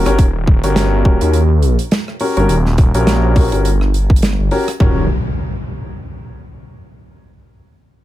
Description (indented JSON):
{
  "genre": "glitch hop",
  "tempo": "104 BPM",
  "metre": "4/4",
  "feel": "swing 56% on 16ths",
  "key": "unclear",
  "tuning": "A4 = 440 Hz",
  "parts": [
    { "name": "warm grand piano", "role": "stabs", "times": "0.0-5.0 s", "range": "Db4 to Bb4", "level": "-19 LUFS", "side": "left 2 dB", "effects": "sidechain pumping, low-pass filter, tape echo" },
    { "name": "phased detuned saw bass", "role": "bass", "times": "0.0-5.1 s", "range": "Eb1 to Eb2", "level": "-14 LUFS", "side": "equal", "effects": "phaser, tube saturation" },
    { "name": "modern studio drum kit", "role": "drums", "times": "0.1-4.8 s", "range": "hi-hat, rim click, snare drum", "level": "-21 LUFS", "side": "right 2 dB", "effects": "none" },
    { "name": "electronic kick drum", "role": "drums", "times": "0.2-4.9 s", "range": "none", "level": "-11 LUFS", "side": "equal", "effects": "none" },
    { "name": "impact", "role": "sound effects", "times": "4.8-7.1 s", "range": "none", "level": "-22 LUFS", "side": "equal", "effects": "none" }
  ],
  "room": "little or no reverb",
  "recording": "none",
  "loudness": "-12 LUFS",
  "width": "side -14 dB against mid",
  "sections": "0.0-4.8 A section; 4.8-7.1 B section",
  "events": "filter sweep on grand piano 0.0-4.8",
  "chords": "0.0 Eb7#9",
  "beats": "| 0.19 0.76 1.34 1.92 | 2.50 3.07 3.65 4.23 | 4.80 5.38 5.96 6.53"
}